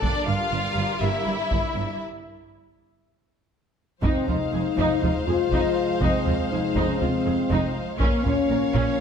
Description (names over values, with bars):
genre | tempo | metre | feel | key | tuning
cinematic, epic orchestral film score | 121 BPM | 4/4 | straight | F minor from 4.0 s | A4 = 441 Hz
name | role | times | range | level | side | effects
warm symphonic violin section | melody | 0.0-9.0 s | D5 to F5 | -32 LUFS | left 4 dB | none
warm symphonic violin section | second line | 0.0-9.0 s | D4 to Db5 | -32 LUFS | left 4 dB | none
warm studio viola section | accompaniment | 0.0-9.0 s | Db4 to Bb4 | -31 LUFS | right 1 dB | none
clear symphonic string section | sustained chords | 0.0-2.0 s | D4 to D5 | -35 LUFS | right 1 dB | none
mellow French horn section | sustained chords | 0.0-9.0 s | Bb3 to G4 | -25 LUFS | left 5 dB | none
clear symphonic cello section | bass | 0.0-8.8 s | F2 to Bb2 | -30 LUFS | right 4 dB | none
warm symphonic double bass section | bass | 0.0-8.8 s | F1 to Bb1 | -31 LUFS | right 4 dB | none
taiko ensemble | drums | 0.0-9.0 s | none | -28 LUFS | equal | none
warm trombone section | sustained chords | 4.0-9.0 s | F3 to Bb3 | -31 LUFS | right 3 dB | none
room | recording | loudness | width
moderate scoring stage reverb, RT60 1.6 s | none | -21 LUFS | side -7 dB against mid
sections
0.0-4.0 A section; 4.0-9.0 B section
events
break 2.0-4.0; drum fill 3.3-4.0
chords
0.0 Gm; 2.0 N.C.; 4.0 Fm7; 8.0 Bbm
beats
| 0.03 0.52 1.02 1.52 | 2.01 2.51 3.02 3.52 | 4.03 4.53 5.02 5.52 | 6.01 6.51 7.00 7.50 | 8.00 8.49 8.99